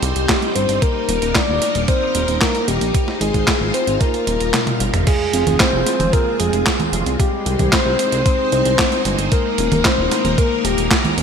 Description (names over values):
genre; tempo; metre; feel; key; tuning
italo disco; 113 BPM; 4/4; straight; F minor; A4 = 440 Hz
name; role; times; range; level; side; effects
soft octave-layered synth lead; melody; 0.0-11.1 s; G4 to D5; -20 LUFS; left 2 dB; chorus, ping-pong delay
string machine, full ensemble; sustained chords; 0.0-11.2 s; G3 to C5; -23 LUFS; right 1 dB; phaser, ensemble chorus
chorused synth bass; bass; 0.0-11.2 s; Eb1 to C2; -21 LUFS; equal; none
clean 12-bit digital drum machine; drums; 0.0-11.2 s; congas, crash cymbal, handclaps, hi-hat, snare drum, toms; -20 LUFS; right 1 dB; studio reverb, gated reverb
electronic kick drum; drums; 0.3-11.0 s; none; -19 LUFS; equal; studio reverb
room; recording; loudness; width
moderate plate reverb, RT60 2.9 s; bright 1980s-style digital production; -15 LUFS; side -6 dB against mid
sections
0.0-5.1 A section; 5.1-11.2 B section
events
kick drops out 4.5-5.1; drum fill 4.5-5.1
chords
0.0 Cm; 0.8 Eb; 2.9 Ab6; 4.0 Ebadd9; 5.1 Fm; 7.2 Cm; 9.3 Eb